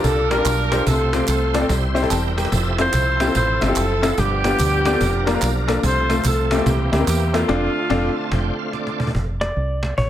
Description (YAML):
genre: uptempo gospel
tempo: 145 BPM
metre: 4/4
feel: swing 64% on 8ths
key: F major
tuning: A4 = 440 Hz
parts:
  - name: clear saxophone section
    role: melody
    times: 0.0-8.7 s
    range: A3 to C5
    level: -22 LUFS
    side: equal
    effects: none
  - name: clear grand piano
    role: accompaniment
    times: 0.0-8.1 s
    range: G2 to A5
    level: -22 LUFS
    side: left 3 dB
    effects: none
  - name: bright tonewheel organ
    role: sustained chords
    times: 0.0-9.1 s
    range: D3 to A5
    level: -26 LUFS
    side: right 2 dB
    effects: slow rotary speaker, overdrive, chorus vibrato
  - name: deep dub fingered electric bass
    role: bass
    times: 0.0-10.1 s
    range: E1 to E2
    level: -22 LUFS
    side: right 1 dB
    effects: none
  - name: cajon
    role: drums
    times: 0.0-10.1 s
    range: none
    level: -26 LUFS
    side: equal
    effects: none
  - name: tambourine and handclaps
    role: percussion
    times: 0.0-7.4 s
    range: none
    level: -31 LUFS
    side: right 7 dB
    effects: none
  - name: clean lap steel guitar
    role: melody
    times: 9.4-10.1 s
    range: Db5 to D5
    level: -24 LUFS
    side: equal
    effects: none
room: light reverb, small room reverb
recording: none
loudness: -17 LUFS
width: side -11 dB against mid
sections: 0.0-9.1 A section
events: drum fill 1.7-2.5, 8.7-9.1; band accent 7.5-9.1; grand piano fill 7.9-9.1; tonewheel organ fill 7.9-9.1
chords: 0.0 Gm7; 0.9 F/C; 1.7 C; 2.5 Fmaj7; 4.2 G7; 5.0 Bb/F; 5.8 F/C; 6.7 C7; 7.5 F6; 9.1 F5